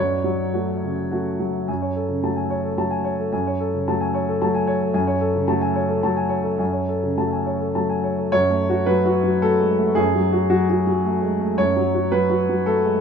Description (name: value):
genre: neoclassical minimalist piano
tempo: 103-113 BPM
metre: 3/4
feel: rubato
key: unclear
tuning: A4 = 440 Hz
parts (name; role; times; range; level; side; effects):
- warm concert grand piano; solo; 0.0-13.0 s; F#2 to A5; -18 LUFS; equal; none
room: moderate plate reverb, RT60 3.4 s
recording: minimal, uncompressed stereo recording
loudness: -19 LUFS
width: side -6 dB against mid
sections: 0.0-1.7 A section; 1.7-8.3 B section; 8.3-13.0 C section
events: none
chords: 0.0 F#m; 1.7 F#madd9